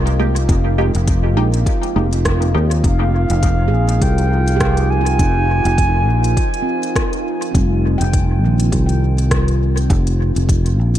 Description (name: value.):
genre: ambient dub.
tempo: 102 BPM.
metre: 4/4.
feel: swing 56% on 16ths.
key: F minor.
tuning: A4 = 438 Hz.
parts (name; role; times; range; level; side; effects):
warbly tape-like pad; sustained chords; 0.0-11.0 s; F3 to F5; -24 LUFS; left 1 dB; chorus, built-in reverb.
fingered electric bass; bass; 0.0-11.0 s; F1 to Eb2; -15 LUFS; equal; none.
organic electronic drum kit; drums; 0.1-11.0 s; hi-hat, rim click; -27 LUFS; equal; dub echo.
filtered dub chord stab; stabs; 0.2-2.7 s; Ab3 to G4; -24 LUFS; right 2 dB; phaser, dub echo.
electronic kick drum; drums; 0.5-10.6 s; none; -18 LUFS; equal; overdrive.
mellow wooden flute; melody; 2.8-6.7 s; F5 to Ab5; -23 LUFS; equal; tape echo.
handpan; arpeggios; 3.7-11.0 s; Eb3 to G5; -24 LUFS; right 4 dB; tape echo.
room: little or no reverb.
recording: none.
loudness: -14 LUFS.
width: side -12 dB against mid.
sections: 0.0-11.0 A section.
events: none.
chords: 0.0 Fm11.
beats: | 0.49 1.08 1.67 2.25 | 2.84 3.43 4.02 4.61 | 5.19 5.78 6.37 6.96 | 7.55 8.13 8.72 9.31 | 9.90 10.49.